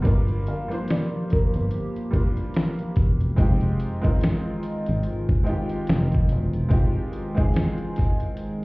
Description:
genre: lo-fi hip hop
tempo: 72 BPM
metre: 4/4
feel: swing 58% on 16ths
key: F dorian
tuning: A4 = 440 Hz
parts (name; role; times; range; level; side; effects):
- clear upright piano; accompaniment; 0.0-8.6 s; G3 to C5; -30 LUFS; right 1 dB; cassette tape, plate reverb
- hollow soft pad; sustained chords; 0.0-8.6 s; Eb3 to G4; -31 LUFS; equal; chorus
- fingered electric bass; bass; 0.0-6.7 s; E1 to Ab1; -22 LUFS; equal; none
- dusty soul sampler-style drum kit; drums; 0.1-8.6 s; finger snaps, hi-hat, kick drum, snare drum; -22 LUFS; equal; none
- felt-muted upright piano; melody; 0.5-2.5 s; Bb4 to F5; -32 LUFS; equal; plate reverb
room: light reverb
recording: heard muffled through a wall, club reverb, EQ, faint mains hum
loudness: -21 LUFS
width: side -24 dB against mid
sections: 0.0-8.6 A section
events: none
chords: 0.1 Gm7; 3.4 Fm7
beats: | 0.05 0.89 1.72 2.55 | 3.39 4.22 5.05 5.89 | 6.72 7.55 8.39

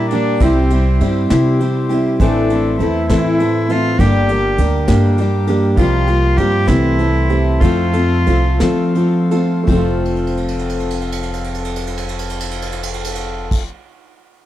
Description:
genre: folk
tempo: 53-67 BPM (dotted quarters)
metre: 6/8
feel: straight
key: F major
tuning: A4 = 439 Hz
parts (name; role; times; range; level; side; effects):
- warm cello; melody; 0.0-8.9 s; C4 to G4; -20 LUFS; equal; none
- picked steel-string acoustic guitar; accompaniment; 0.0-13.7 s; G2 to A4; -19 LUFS; left 3 dB; none
- mellow accordion; sustained chords; 0.0-13.6 s; C4 to D6; -28 LUFS; left 2 dB; stereo widening
- dark upright piano; arpeggios; 0.0-13.7 s; E3 to G4; -23 LUFS; right 9 dB; none
- upright bass; bass; 0.0-13.6 s; F1 to F3; -17 LUFS; equal; none
- vintage brush drum kit; drums; 0.1-13.7 s; crash cymbal, kick drum, ride cymbal, snare drum; -22 LUFS; equal; none
room: little or no reverb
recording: dry, close 1970s-style studio recording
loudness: -13 LUFS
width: side -13 dB against mid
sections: 0.0-9.7 A section; 9.7-14.2 B section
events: slowing down 5.8-9.7; drum fill 10.1-13.5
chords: 0.4 C; 2.2 Am; 4.0 Gm; 5.8 C7sus4; 6.7 C6; 7.6 F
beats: | 0.41 1.30 | 2.20 3.09 | 3.99 4.88 | 5.77 6.68 | 7.61 8.60 | 9.68 10.80 | 11.93 13.05

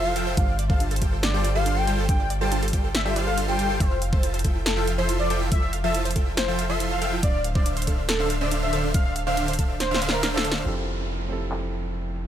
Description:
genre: future bass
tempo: 140 BPM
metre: 4/4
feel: half-time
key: F major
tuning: A4 = 442 Hz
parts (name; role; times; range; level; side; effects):
- warm velvety synth lead; melody; 0.0-10.5 s; A4 to G5; -29 LUFS; equal; chorus, sidechain pumping, dub echo
- supersaw chords; riff; 0.0-10.6 s; D3 to C6; -28 LUFS; equal; sidechain pumping
- long sustained 808-style bass; bass; 0.0-12.3 s; D1 to G1; -28 LUFS; equal; tube saturation, sidechain pumping
- wide unison pluck; arpeggios; 0.1-10.6 s; D4 to F5; -34 LUFS; right 5 dB; sidechain pumping, ping-pong delay
- big-room dance drum kit; drums; 0.2-12.2 s; handclaps, hi-hat, ride cymbal, snare drum; -29 LUFS; equal; low-pass filter on snare, low-pass filter on hats, low-pass filter on cymbals
- electronic kick drum; drums; 0.4-9.7 s; none; -23 LUFS; equal; overdrive
- felt-muted upright piano; accompaniment; 10.6-12.3 s; F3 to A4; -33 LUFS; right 4 dB; sidechain pumping, ping-pong delay
- downlifter; sound effects; 10.7-12.3 s; none; -39 LUFS; right 2 dB; none
room: little or no reverb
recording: none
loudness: -21 LUFS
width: side -10 dB against mid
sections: 0.0-10.7 A section; 10.7-12.3 B section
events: drop 0.0-10.7; drum fill 9.8-10.7; band accent 10.5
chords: 0.4 G9sus4; 3.8 Fmaj7; 7.2 Dm7; 10.7 Fmaj7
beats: | 0.37 0.80 1.23 1.66 | 2.09 2.52 2.94 3.37 | 3.80 4.23 4.66 5.09 | 5.52 5.95 6.37 6.80 | 7.23 7.66 8.09 8.52 | 8.95 9.37 9.80 10.23 | 10.66 11.09 11.52 11.95

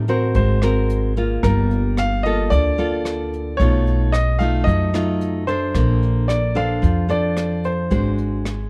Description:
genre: bossa nova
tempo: 111 BPM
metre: 4/4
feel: straight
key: G minor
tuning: A4 = 439 Hz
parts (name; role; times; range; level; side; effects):
- nylon-string guitar; accompaniment; 0.0-8.7 s; A2 to C5; -25 LUFS; equal; none
- upright bass; bass; 0.0-8.7 s; G1 to F#2; -22 LUFS; equal; none
- warm baby grand piano; melody; 0.1-8.2 s; Bb4 to F5; -26 LUFS; equal; none
- jazz brush drum kit; drums; 0.1-8.6 s; hi-hat, kick drum, rim click; -28 LUFS; equal; none
room: light reverb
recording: dark, warm production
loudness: -19 LUFS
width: mono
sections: 0.0-8.7 A section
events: none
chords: 0.3 Ab9; 1.4 Gm9; 3.6 B7#11; 5.8 Bbmaj9; 7.9 Ab7#11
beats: 0.35 0.89 | 1.43 1.97 2.51 3.05 | 3.59 4.13 4.67 5.22 | 5.76 6.30 6.84 7.38 | 7.92 8.46

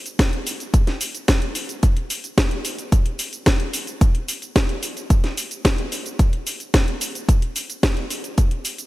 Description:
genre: nu-disco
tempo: 110 BPM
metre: 4/4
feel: straight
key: none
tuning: none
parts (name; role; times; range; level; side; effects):
- house drum kit; drums; 0.1-8.9 s; cabasa, hi-hat, snare drum; -24 LUFS; equal; none
- electronic kick drum; drums; 0.2-8.5 s; none; -17 LUFS; equal; none
room: light reverb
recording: bright 1980s-style digital production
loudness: -19 LUFS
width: side -18 dB against mid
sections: 0.0-8.9 A section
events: none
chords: none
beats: 0.19 0.74 1.28 | 1.83 2.38 2.92 3.47 | 4.01 4.56 5.10 5.65 | 6.19 6.74 7.29 7.83 | 8.38

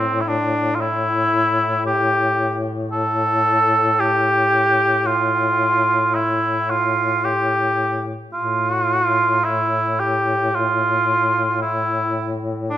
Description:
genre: caucasian folk, Caucasian lament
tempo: 56 BPM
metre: 3/4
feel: rubato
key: unclear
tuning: A4 = 440 Hz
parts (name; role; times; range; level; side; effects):
- mellow cor anglais; melody; 0.0-12.8 s; C4 to A4; -17 LUFS; right 1 dB; none
- mellow duduk; drone; 0.0-12.8 s; A2; -24 LUFS; left 2 dB; none
room: moderate recital hall reverb, RT60 1.5 s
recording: minimal, uncompressed stereo recording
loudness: -16 LUFS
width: side -12 dB against mid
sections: 0.0-12.8 A section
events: none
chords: none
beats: 0.83 | 1.89 2.95 4.02 | 5.08 6.16 7.26 | 8.37 9.47 10.56 | 11.65 12.74

